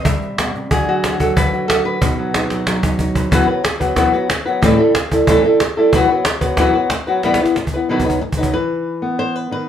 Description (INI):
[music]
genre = flamenco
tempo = 184 BPM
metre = 4/4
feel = straight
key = B phrygian dominant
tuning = A4 = 445 Hz
[part]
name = flamenco guitar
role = melody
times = 0.0-9.7 s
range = A2 to E5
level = -16 LUFS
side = equal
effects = none
[part]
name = cajon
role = percussion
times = 0.1-8.5 s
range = none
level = -19 LUFS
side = equal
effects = none
[sound]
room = wet studio ambience, RT60 0.5 s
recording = heard from further back in the room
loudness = -14 LUFS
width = side -9 dB against mid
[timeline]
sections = 0.0-3.3 A section; 3.3-8.5 B section; 8.5-9.7 C section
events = drum fill 2.5-3.3, 7.2-8.5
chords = 0.0 C; 0.7 D; 2.0 B; 3.3 Bsus4; 4.6 Am7; 5.9 Bsus4; 7.2 Em; 7.9 B; 8.5 E5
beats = 0.06 0.39 | 0.71 1.04 1.36 1.69 | 2.02 2.34 2.67 2.99 | 3.32 3.65 3.97 4.30 | 4.62 4.95 5.28 5.60 | 5.93 6.25 6.58 6.91 | 7.23 7.56 7.89 8.21 | 8.54 8.86 9.19 9.52